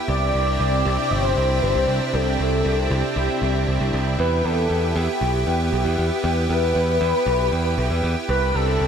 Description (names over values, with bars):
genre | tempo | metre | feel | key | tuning
synthwave | 117 BPM | 4/4 | straight | E minor | A4 = 441 Hz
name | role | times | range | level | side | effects
lush unison pad | sustained chords | 0.0-8.9 s | C3 to G4 | -24 LUFS | right 1 dB | chorus
expressive synth lead | melody | 0.1-8.9 s | G4 to D5 | -23 LUFS | left 1 dB | analog chorus, ping-pong delay
modern bright picked electric bass | bass | 0.1-8.9 s | G1 to E2 | -22 LUFS | equal | none
room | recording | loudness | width
moderate plate reverb, RT60 2.6 s | dreamy mix soaked in reverb | -18 LUFS | side -7 dB against mid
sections
0.0-8.9 A section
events
none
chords
0.1 Cadd9; 4.2 Em; 8.3 Cadd9